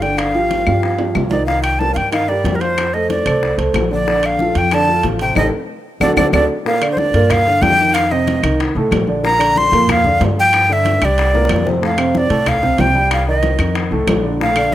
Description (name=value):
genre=Afro-Cuban jazz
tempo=186 BPM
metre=4/4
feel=straight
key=Bb major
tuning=A4 = 439 Hz
part: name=breathy bright jazz flute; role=melody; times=0.0-14.7 s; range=Bb4 to C6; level=-16 LUFS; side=equal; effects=none
part: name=warm upright piano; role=accompaniment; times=0.0-14.7 s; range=A2 to G5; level=-19 LUFS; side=right 2 dB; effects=none
part: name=upright bass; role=bass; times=0.0-14.7 s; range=G1 to G2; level=-20 LUFS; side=equal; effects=none
part: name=bongos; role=percussion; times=0.0-14.7 s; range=none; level=-24 LUFS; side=left 7 dB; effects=none
part: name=congas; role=percussion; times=0.0-14.7 s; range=none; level=-26 LUFS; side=equal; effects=none
part: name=timbales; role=percussion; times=0.0-14.7 s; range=none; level=-26 LUFS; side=right 5 dB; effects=none
part: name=claves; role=percussion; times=0.2-14.7 s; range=none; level=-24 LUFS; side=left 5 dB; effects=none
room=light reverb, studio reverb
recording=rough home demo mix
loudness=-13 LUFS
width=side -13 dB against mid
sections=0.0-6.7 A section; 6.7-14.7 B section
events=drum fill 0.7-1.5, 5.4-6.7, 11.3-11.8; band accent 5.4-6.7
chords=0.2 G5; 1.5 Cm7; 2.8 F6; 4.1 Bbmaj9; 5.4 Eb; 6.0 D; 6.7 Gm7; 7.9 F7; 9.2 Bb69; 10.5 G5; 11.2 Csus2; 11.8 F6; 13.1 Cm; 13.8 F7